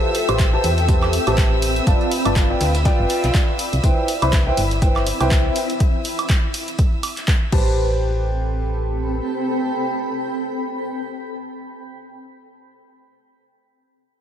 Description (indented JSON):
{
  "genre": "piano house",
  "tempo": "122 BPM",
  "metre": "4/4",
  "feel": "swing 57% on 16ths",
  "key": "A minor",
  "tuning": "A4 = 440 Hz",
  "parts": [
    { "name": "rich chamber violin section", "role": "sustained chords", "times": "0.0-7.5 s", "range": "E5 to E6", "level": "-29 LUFS", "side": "right 1 dB", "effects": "sidechain pumping" },
    { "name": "warm grand piano", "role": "riff", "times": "0.0-11.3 s", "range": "E4 to C6", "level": "-24 LUFS", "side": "equal", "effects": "analog chorus, sidechain pumping, ping-pong delay" },
    { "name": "granular cloud pad", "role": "texture", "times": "0.0-11.8 s", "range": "C4 to B5", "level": "-26 LUFS", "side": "equal", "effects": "built-in reverb, lush chorus, sidechain pumping" },
    { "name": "dusty soul sampler-style drum kit", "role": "drums", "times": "0.1-5.7 s", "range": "hi-hat, snare drum, tambourine", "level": "-36 LUFS", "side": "left 2 dB", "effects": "none" },
    { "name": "punchy analog drum machine", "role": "drums", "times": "0.1-7.6 s", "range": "crash cymbal, handclaps, hi-hat, ride cymbal, woodblock", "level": "-26 LUFS", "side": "right 2 dB", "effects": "overdrive" },
    { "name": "solid FM bass", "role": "bass", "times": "0.3-9.2 s", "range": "G1 to E2", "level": "-21 LUFS", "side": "equal", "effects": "sidechain pumping" },
    { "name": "electronic kick drum", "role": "drums", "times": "0.4-7.6 s", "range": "none", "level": "-18 LUFS", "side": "equal", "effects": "overdrive" }
  ],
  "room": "light reverb, digital ambience",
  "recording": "none",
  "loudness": "-17 LUFS",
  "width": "side -10 dB against mid",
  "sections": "0.0-7.8 A section; 7.8-11.7 B section",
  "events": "drop 0.0-7.8",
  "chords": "0.0 Am9; 1.9 G7; 3.6 Cmaj7; 5.6 Fmaj9; 7.5 Am9"
}